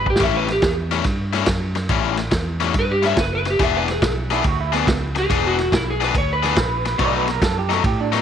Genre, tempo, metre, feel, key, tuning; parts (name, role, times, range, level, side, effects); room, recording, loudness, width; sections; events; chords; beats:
electric blues shuffle; 141 BPM; 4/4; swing 67% on 8ths; A4 = 442 Hz
electric slide guitar; melody; 0.0-7.1 s; E4 to E5; -22 LUFS; equal
fingered electric bass; bass; 0.0-8.2 s; E1 to A2; -25 LUFS; right 1 dB
crunchy overdriven guitar; riff; 0.1-8.2 s; A2 to G#4; -23 LUFS; left 11 dB
vintage drum kit; drums; 0.1-8.2 s; kick drum, ride cymbal, snare drum; -22 LUFS; right 1 dB
electric guitar through a small old amp; second line; 4.3-8.2 s; B3 to D5; -24 LUFS; right 11 dB; tremolo
light reverb, small room reverb; 1960s-style stereo with parts hard left and right; -17 LUFS; side -8 dB against mid
0.0-8.2 A section
drum fill 0.0
0.2 A7; 3.6 E7; 7.0 B7
| 0.21 0.63 1.06 1.48 | 1.91 2.33 2.75 3.18 | 3.60 4.03 4.45 4.88 | 5.30 5.72 6.15 6.57 | 7.00 7.42 7.84